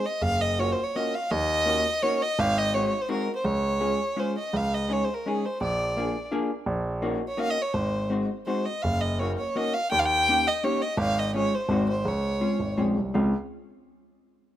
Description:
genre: musette waltz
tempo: 167 BPM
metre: 3/4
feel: rubato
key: Db major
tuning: A4 = 439 Hz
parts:
  - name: rich violin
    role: melody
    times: 0.0-12.8 s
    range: Ab4 to G5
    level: -26 LUFS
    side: equal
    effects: none
  - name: vintage hollow-body jazz guitar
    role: accompaniment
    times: 0.0-13.3 s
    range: Ab3 to Ab4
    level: -29 LUFS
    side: left 1 dB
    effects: none
  - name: warm grand piano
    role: bass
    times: 0.2-13.3 s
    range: Gb1 to Eb2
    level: -28 LUFS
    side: right 1 dB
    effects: none
room: light reverb, studio ambience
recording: rough home demo mix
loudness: -24 LUFS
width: side -12 dB against mid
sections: 0.0-13.1 A section; 13.1-14.2 B section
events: none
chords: 0.2 Gbmaj7; 1.3 Ebm7; 2.4 Ab7; 3.4 Db; 4.5 Dbsus2; 5.6 Bb7; 6.7 Ebm7/Bb; 7.7 Ab7; 8.8 Gb6; 9.9 Eb7; 11.0 Db/Ab; 11.7 Ab7; 12.1 Dbmaj7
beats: | 0.22 0.59 0.95 | 1.31 1.67 2.03 | 2.39 2.74 3.09 | 3.45 3.80 4.17 | 4.53 4.90 5.26 | 5.61 5.97 6.32 | 6.67 7.03 7.38 | 7.74 8.11 8.47 | 8.84 9.20 9.57 | 9.93 10.28 10.64 | 10.99 11.34 11.70 | 12.06 12.42 12.78 | 13.15

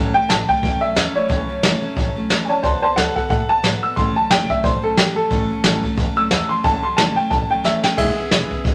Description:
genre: rockabilly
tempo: 180 BPM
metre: 4/4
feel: swing 58% on 8ths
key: A major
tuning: A4 = 440 Hz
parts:
  - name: picked steel-string acoustic guitar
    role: accompaniment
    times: 0.0-8.7 s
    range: A2 to A4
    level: -28 LUFS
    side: equal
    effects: none
  - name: upright bass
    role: bass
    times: 0.0-8.7 s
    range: E1 to A2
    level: -30 LUFS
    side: equal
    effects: none
  - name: warm upright piano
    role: melody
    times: 0.1-8.6 s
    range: E4 to E6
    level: -22 LUFS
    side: equal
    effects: none
  - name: jazz brush drum kit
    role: drums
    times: 0.3-8.7 s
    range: crash cymbal, hi-hat, kick drum, snare drum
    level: -22 LUFS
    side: equal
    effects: none
room: moderate studio reverb, RT60 0.8 s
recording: none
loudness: -18 LUFS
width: mono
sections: 0.0-8.7 A section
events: upright piano solo 0.0-8.7; drum fill 7.6-8.0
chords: 0.0 A6; 2.6 D6; 4.0 A6; 8.0 E6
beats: 0.29 0.63 0.96 | 1.30 1.63 1.97 2.30 | 2.63 2.97 3.30 3.64 | 3.97 4.31 4.64 4.97 | 5.31 5.64 5.98 6.31 | 6.64 6.98 7.31 7.65 | 7.98 8.31 8.65

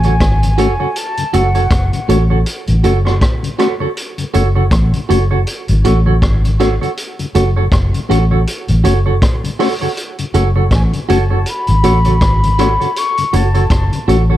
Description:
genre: roots reggae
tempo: 80 BPM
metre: 4/4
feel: swing 57% on 16ths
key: F# minor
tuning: A4 = 440 Hz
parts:
  - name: mellow silver concert flute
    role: melody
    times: 0.0-2.1, 10.7-14.1 s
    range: F#5 to C#6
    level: -19 LUFS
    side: left 2 dB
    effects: tape echo
  - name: clean electric guitar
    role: accompaniment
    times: 0.0-14.4 s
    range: F#4 to C#5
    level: -19 LUFS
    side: right 6 dB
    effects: tape echo
  - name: mellow tonewheel organ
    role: accompaniment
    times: 0.0-14.4 s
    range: F#2 to F#4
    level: -19 LUFS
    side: left 4 dB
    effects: slow rotary speaker
  - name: vintage muted fingered electric bass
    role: bass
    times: 0.0-14.4 s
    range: F#1 to A1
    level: -13 LUFS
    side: equal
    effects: none
  - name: vintage drum kit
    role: drums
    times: 0.0-14.3 s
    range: hi-hat, kick drum, rim click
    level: -18 LUFS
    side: equal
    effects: none
room: little or no reverb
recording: none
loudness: -11 LUFS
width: side -13 dB against mid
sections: 0.0-14.4 A section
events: none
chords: 0.0 F#m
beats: 0.20 | 0.96 1.71 2.46 3.21 | 3.97 4.72 5.47 6.22 | 6.97 7.72 8.47 9.22 | 9.97 10.72 11.46 12.21 | 12.96 13.71

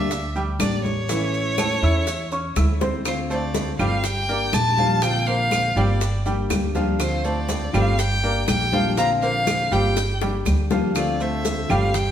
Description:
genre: latin, Cuban son and guajira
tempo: 122 BPM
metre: 4/4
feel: straight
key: D minor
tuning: A4 = 440 Hz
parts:
  - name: warm violin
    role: melody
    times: 0.0-12.1 s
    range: C5 to Bb5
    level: -25 LUFS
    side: equal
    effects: none
  - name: nylon-string guitar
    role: accompaniment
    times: 0.0-12.0 s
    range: D3 to G4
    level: -27 LUFS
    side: left 3 dB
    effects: none
  - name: clear grand piano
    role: arpeggios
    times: 0.0-12.1 s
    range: E3 to E6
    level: -26 LUFS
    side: right 1 dB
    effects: none
  - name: upright bass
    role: bass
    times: 0.0-12.1 s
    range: G1 to E2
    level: -24 LUFS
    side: right 1 dB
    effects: none
  - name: bongos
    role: percussion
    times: 0.1-12.1 s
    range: none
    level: -32 LUFS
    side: left 4 dB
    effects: none
  - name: congas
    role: percussion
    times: 0.1-12.1 s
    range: none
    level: -30 LUFS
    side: equal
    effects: none
  - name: maracas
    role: percussion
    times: 0.1-12.1 s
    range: none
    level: -36 LUFS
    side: right 4 dB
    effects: none
  - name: claves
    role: percussion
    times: 0.6-11.9 s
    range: none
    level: -34 LUFS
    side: right 3 dB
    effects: none
room: wet stone room reverb, RT60 1.2 s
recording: band playing live in one room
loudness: -19 LUFS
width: side -10 dB against mid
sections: 0.0-3.1 A section; 3.1-12.1 B section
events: drum fill 2.8, 10.0-11.0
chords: 0.0 Gm; 1.1 A; 3.1 Dm7; 4.0 Gm; 5.0 Bbadd9; 6.0 Gm; 7.0 Dm7; 8.0 Gm; 9.0 Bbadd9; 10.0 Gm; 11.0 Dm7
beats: 0.11 0.60 | 1.09 1.58 2.07 2.56 | 3.06 3.55 4.04 4.53 | 5.03 5.52 6.01 6.51 | 7.00 7.49 7.99 8.48 | 8.98 9.47 9.96 10.46 | 10.96 11.45 11.95

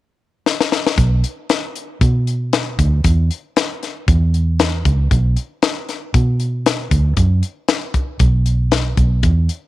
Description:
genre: straight-eighth soul blues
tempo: 116 BPM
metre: 4/4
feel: swing 55% on 16ths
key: B minor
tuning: A4 = 439 Hz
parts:
  - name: tight funk drum kit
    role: drums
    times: 0.5-9.6 s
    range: hi-hat, kick drum, snare drum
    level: -18 LUFS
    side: left 3 dB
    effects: none
  - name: vintage muted fingered electric bass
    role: bass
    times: 1.0-9.5 s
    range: B1 to B2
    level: -15 LUFS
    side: right 1 dB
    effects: transformer saturation
room: little or no reverb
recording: 1960s-style stereo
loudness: -15 LUFS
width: side -15 dB against mid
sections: 1.0-9.7 A section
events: drum fill 0.5-1.0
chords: none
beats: 0.46 | 0.98 1.50 2.01 2.53 | 3.04 3.56 4.08 4.59 | 5.11 5.63 6.14 6.66 | 7.17 7.69 8.21 8.72 | 9.24

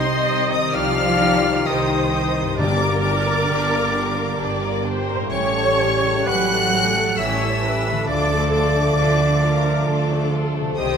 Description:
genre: cinematic, emotional film score for orchestra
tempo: 66 BPM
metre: 3/4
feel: rubato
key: unclear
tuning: A4 = 440 Hz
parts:
  - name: rich studio violin section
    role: melody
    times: 0.0-11.0 s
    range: C6 to F#6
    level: -26 LUFS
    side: left 4 dB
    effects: none
  - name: bright oboe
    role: second line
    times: 0.0-11.0 s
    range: C5 to F#5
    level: -27 LUFS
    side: right 1 dB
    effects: none
  - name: concert flute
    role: second line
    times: 0.0-11.0 s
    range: C5 to F#5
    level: -26 LUFS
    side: left 2 dB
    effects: none
  - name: rich studio violin section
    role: second line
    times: 0.0-11.0 s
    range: A3 to Bb4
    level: -28 LUFS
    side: left 4 dB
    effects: none
  - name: warm studio viola section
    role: accompaniment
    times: 0.0-11.0 s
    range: A4 to Eb5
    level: -25 LUFS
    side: right 1 dB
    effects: none
  - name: mellow French horn section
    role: sustained chords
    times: 0.0-11.0 s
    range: Eb3 to Bb4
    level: -27 LUFS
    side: left 2 dB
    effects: none
  - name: concert harp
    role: arpeggios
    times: 0.0-11.0 s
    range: G2 to C5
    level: -30 LUFS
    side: left 5 dB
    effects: none
  - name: clear studio double bass section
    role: bass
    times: 0.0-11.0 s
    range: G1 to D2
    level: -26 LUFS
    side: right 4 dB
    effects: none
  - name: warm studio cello section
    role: bass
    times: 0.0-11.0 s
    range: C3 to F#3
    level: -25 LUFS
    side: right 4 dB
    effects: none
  - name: timpani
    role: percussion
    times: 2.6-3.9 s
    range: G2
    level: -28 LUFS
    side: left 2 dB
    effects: none
room: wet scoring stage reverb, RT60 1.6 s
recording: minimal, uncompressed stereo recording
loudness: -17 LUFS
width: side -7 dB against mid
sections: 0.0-11.0 A section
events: none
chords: 0.0 Cm; 2.6 Gm; 5.3 A7; 8.1 Dm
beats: 0.74 1.67 | 2.58 3.50 4.40 | 5.31 6.28 7.19 | 8.08 8.98 9.87 | 10.78

